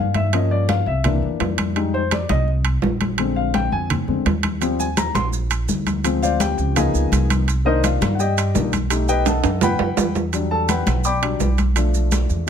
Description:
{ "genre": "Afro-Cuban jazz", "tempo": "168 BPM", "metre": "4/4", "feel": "straight", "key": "unclear", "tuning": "A4 = 440 Hz", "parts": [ { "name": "warm baby grand piano", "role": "accompaniment", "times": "0.0-12.5 s", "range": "D3 to D6", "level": "-22 LUFS", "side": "left 4 dB", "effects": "none" }, { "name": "upright bass", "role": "bass", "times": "0.0-12.5 s", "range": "Bb1 to G2", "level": "-21 LUFS", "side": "right 1 dB", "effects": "none" }, { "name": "congas", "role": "percussion", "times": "0.1-12.3 s", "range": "none", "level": "-25 LUFS", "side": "left 2 dB", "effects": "none" }, { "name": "timbales", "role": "percussion", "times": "0.1-12.3 s", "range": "none", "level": "-24 LUFS", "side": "right 8 dB", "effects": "none" }, { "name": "maracas", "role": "percussion", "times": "4.6-12.5 s", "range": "none", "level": "-32 LUFS", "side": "right 9 dB", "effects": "none" } ], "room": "little or no reverb", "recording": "close, detailed microphones", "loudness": "-17 LUFS", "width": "side -8 dB against mid", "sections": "0.0-10.3 A section; 10.3-12.5 A section", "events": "grand piano solo 0.0-12.5; drum fill 9.3-10.3", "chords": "0.3 Gm7b5; 1.0 C7; 1.8 Fm7; 6.0 Dm7b5; 6.8 Db13; 7.5 Cm9; 8.9 B7b13; 10.3 Em9; 11.8 Bm7b5" }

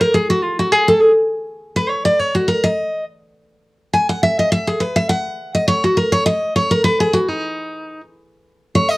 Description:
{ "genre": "bluegrass", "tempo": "206 BPM", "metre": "4/4", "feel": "swing 54% on 8ths", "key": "unclear", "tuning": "A4 = 445 Hz", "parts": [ { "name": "picked steel-string acoustic guitar", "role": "solo", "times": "0.0-9.0 s", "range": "D#4 to G#5", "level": "-14 LUFS", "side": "equal", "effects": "none" } ], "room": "moderate studio ambience, RT60 0.5 s", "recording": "worn, warbling old tape, cassette tape, warbly pitch drift", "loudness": "-15 LUFS", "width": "side -22 dB against mid", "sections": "0.0-7.4 A section; 7.4-9.0 A section", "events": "steel-string acoustic guitar solo 0.0-9.0", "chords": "none" }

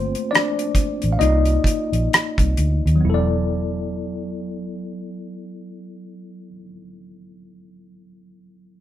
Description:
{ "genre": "R&B, neo-soul", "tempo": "63-69 BPM", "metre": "4/4", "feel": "swing 60% on 16ths", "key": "unclear", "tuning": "A4 = 439 Hz", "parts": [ { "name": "tine electric piano", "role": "accompaniment", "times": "0.0-8.8 s", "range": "F#3 to F5", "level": "-24 LUFS", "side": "left 2 dB", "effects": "overdrive, fast stereo tremolo" }, { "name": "vintage muted fingered electric bass", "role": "bass", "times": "0.0-6.6 s", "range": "E1 to Eb2", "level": "-20 LUFS", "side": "equal", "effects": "none" }, { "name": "damped 70s drum kit", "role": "drums", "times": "0.1-3.0 s", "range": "hi-hat, kick drum, rim click", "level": "-18 LUFS", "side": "equal", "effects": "none" } ], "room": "light reverb", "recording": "band playing live in one room", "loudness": "-18 LUFS", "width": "side -12 dB against mid", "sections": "0.0-3.0 A section; 3.0-6.9 B section", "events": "slowing down 0.0-3.0; tine electric piano solo 0.0-3.0", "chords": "0.0 Gm11 (rootless); 1.2 Cm11; 3.0 E9sus4" }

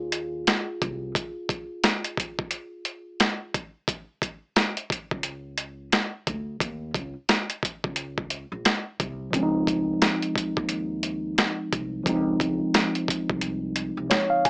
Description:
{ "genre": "hip hop, boom-bap hip-hop", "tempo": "88 BPM", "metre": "4/4", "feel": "swing 61% on 16ths", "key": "Db major", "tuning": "A4 = 440 Hz", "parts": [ { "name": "mellow tine electric piano", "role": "accompaniment", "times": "0.0-3.6, 9.3-14.5 s", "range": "F3 to Ab5", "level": "-27 LUFS", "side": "equal", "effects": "fast stereo tremolo, cassette tape" }, { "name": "upright bass", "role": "bass", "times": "0.0-14.5 s", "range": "Bb1 to Eb2", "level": "-36 LUFS", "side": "equal", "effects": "none" }, { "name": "boom bap sampler-style drum kit", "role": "drums", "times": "0.1-14.5 s", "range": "hi-hat, kick drum, snare drum", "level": "-23 LUFS", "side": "equal", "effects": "overdrive" } ], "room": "little or no reverb", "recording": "dry, gritty hardware recording, small speaker sound", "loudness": "-24 LUFS", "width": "side -27 dB against mid", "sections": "0.0-14.5 A section", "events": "tine electric piano fill 13.8-14.5", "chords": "0.0 Cmadd11 (rootless); 3.5 N.C.; 9.3 Dbmaj7" }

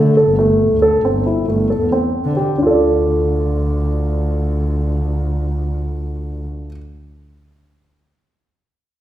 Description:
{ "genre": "contemporary instrumental, chamber music in an uneven meter", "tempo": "135 BPM", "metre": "7/4", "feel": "straight", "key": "D minor", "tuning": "A4 = 439 Hz", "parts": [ { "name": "dark concert grand piano", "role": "arpeggios", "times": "0.0-6.8 s", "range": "A3 to D5", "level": "-16 LUFS", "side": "equal", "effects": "none" }, { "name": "dark double bass", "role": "bass", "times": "0.0-6.5 s", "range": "G1 to D3", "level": "-18 LUFS", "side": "equal", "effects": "none" } ], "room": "wet recital hall reverb, RT60 1.4 s", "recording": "recorded in a church or concert hall", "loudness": "-15 LUFS", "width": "side -12 dB against mid", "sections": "0.0-2.6 A section; 2.6-5.7 B section", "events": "none", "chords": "0.0 Am; 2.6 Dm" }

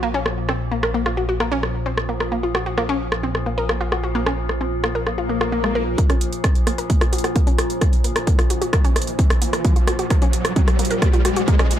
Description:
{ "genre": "driving peak-time techno", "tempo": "131 BPM", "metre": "4/4", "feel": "straight", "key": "unclear", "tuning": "A4 = 440 Hz", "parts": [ { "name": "analog pluck", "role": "riff", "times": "0.0-11.6 s", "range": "Ab3 to Bb4", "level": "-25 LUFS", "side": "left 1 dB", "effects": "chorus, tube saturation, sidechain pumping, analog delay" }, { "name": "dark detuned saw bass", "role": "bass", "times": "0.0-11.8 s", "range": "Bb1 to Bb2", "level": "-28 LUFS", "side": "equal", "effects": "sidechain pumping, high-pass filter" }, { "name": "metallic inharmonic drone", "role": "drone", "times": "0.0-11.8 s", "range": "Bb2 to F3", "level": "-28 LUFS", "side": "equal", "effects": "chorus, built-in reverb, sidechain pumping" }, { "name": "techno drum kit", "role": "drums", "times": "0.3-11.8 s", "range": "hi-hat, rim click", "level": "-24 LUFS", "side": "equal", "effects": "low-pass filter on snare, sidechain pumping on hats, low-pass filter on hats, low-pass filter on room" }, { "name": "swell and riser", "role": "sound effects", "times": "5.2-11.8 s", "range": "none", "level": "-28 LUFS", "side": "left 2 dB", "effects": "none" }, { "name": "electronic kick drum", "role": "drums", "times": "6.0-11.6 s", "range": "none", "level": "-17 LUFS", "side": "equal", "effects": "none" } ], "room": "light reverb, digital ambience", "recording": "dry, gritty hardware recording", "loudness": "-17 LUFS", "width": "side -11 dB against mid", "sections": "0.0-6.0 A section; 6.0-11.8 B section", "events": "swell 5.2-6.0; build-up 6.0-11.8; riser 8.1-11.8", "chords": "0.0 Bb5" }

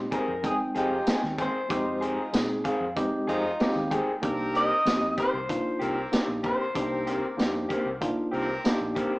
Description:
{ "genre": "straight-eighth soul blues", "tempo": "95 BPM", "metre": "4/4", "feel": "straight", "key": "C minor", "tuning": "A4 = 440 Hz", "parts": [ { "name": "tine electric piano", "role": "accompaniment", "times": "0.0-9.1 s", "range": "Ab3 to G5", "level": "-30 LUFS", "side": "equal", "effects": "fast stereo tremolo" }, { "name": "vintage muted fingered electric bass", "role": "bass", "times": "0.0-9.0 s", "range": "Bb1 to Bb2", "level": "-43 LUFS", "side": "equal", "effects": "none" }, { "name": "electric guitar through a small old amp", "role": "melody", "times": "0.1-8.9 s", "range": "G4 to Eb5", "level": "-29 LUFS", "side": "equal", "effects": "none" }, { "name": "electric guitar through a small old amp", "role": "stabs", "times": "0.1-9.2 s", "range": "Eb3 to Ab4", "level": "-32 LUFS", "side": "left 1 dB", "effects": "spring reverb" }, { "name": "crunchy breakbeat drum kit", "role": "drums", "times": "0.1-9.1 s", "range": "hi-hat, kick drum, snare drum, tambourine", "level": "-29 LUFS", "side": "equal", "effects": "none" }, { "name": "bright horn section", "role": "sustained chords", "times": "0.8-8.8 s", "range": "C4 to Bb4", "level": "-34 LUFS", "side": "equal", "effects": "none" } ], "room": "moderate stone room reverb, RT60 1.1 s", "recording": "band playing live in one room, cassette tape, small speaker sound", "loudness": "-24 LUFS", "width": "side -22 dB against mid", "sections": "0.0-9.2 A section", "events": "tine electric piano fill 2.3-4.2", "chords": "0.0 Fm7; 4.2 Cm7" }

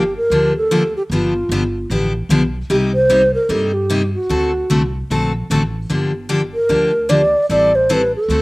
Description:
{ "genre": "acoustic string swing (jazz manouche)", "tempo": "150 BPM", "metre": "4/4", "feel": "swing 61% on 8ths", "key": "G minor", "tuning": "A4 = 440 Hz", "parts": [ { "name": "mellow wooden-headed alto flute", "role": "melody", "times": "0.0-8.4 s", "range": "F4 to D5", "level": "-15 LUFS", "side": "right 1 dB", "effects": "slapback echo" }, { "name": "picked steel-string acoustic guitar", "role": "accompaniment", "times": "0.0-8.4 s", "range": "C3 to A4", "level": "-18 LUFS", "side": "left 1 dB", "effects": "none" }, { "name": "upright bass", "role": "bass", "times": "0.0-8.4 s", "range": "G1 to G2", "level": "-23 LUFS", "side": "equal", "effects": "none" } ], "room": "little or no reverb", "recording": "recorded outdoors, with no room sound", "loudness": "-14 LUFS", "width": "side -22 dB against mid", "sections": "0.0-8.4 A section", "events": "none", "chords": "0.0 Gm7; 1.1 G7; 2.7 Cm7; 4.3 D7; 5.9 Gm7; 7.5 Am7" }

